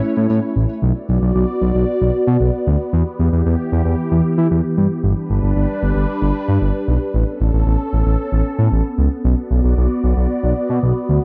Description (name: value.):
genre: pop.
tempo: 114 BPM.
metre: 4/4.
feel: straight.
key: B minor.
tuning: A4 = 440 Hz.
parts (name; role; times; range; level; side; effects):
phased analog pad; sustained chords; 0.0-11.2 s; E3 to D5; -23 LUFS; equal; phaser, chorus.
smooth synth bass; bass; 0.2-11.2 s; G1 to E3; -18 LUFS; equal; none.
room: light reverb, digital ambience.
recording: dark, warm production.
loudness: -17 LUFS.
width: mono.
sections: 0.8-11.2 A section.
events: none.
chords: 0.0 A; 0.8 Bm; 2.9 Em; 5.0 G; 7.1 Aadd9; 9.2 Bm.